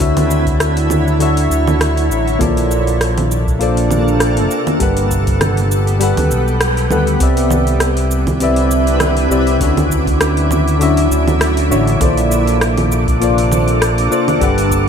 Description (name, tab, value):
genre	sunset chillout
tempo	100 BPM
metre	4/4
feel	swing 55% on 16ths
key	C lydian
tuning	A4 = 439 Hz
part	soft electric-piano-like synth keys	accompaniment	0.0-14.9 s	D3 to F#5	-17 LUFS	moving between left 5 dB and right 3 dB	chorus, auto-pan, digital delay
part	shimmering ambient pad	sustained chords	0.0-14.9 s	C3 to E5	-19 LUFS	equal	chorus, built-in reverb
part	overdriven fingered electric bass	bass	0.0-14.9 s	G1 to D2	-16 LUFS	equal	none
part	deep house drum kit	drums	0.0-14.8 s	cabasa, congas, hi-hat, rim click	-20 LUFS	right 2 dB	overdrive, studio reverb
part	electronic kick drum	drums	0.0-14.8 s	none	-19 LUFS	equal	studio reverb
part	wind-like tuned noise texture	texture	7.8-14.9 s	D6	-25 LUFS	right 2 dB	built-in reverb
room	light reverb, digital ambience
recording	none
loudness	-12 LUFS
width	side -7 dB against mid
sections	0.0-7.2 A section; 7.2-14.9 B section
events	band accent 6.6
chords	0.0 Dmaj9; 2.4 Bbmaj9; 4.8 Gmaj9; 7.2 Cmaj9; 9.6 Dmaj9; 12.0 Bbmaj9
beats	| 0.01 0.61 1.21 1.81 | 2.41 3.01 3.61 4.21 | 4.81 5.41 6.01 6.61 | 7.21 7.81 8.41 9.01 | 9.61 10.21 10.81 11.41 | 12.01 12.61 13.21 13.81 | 14.41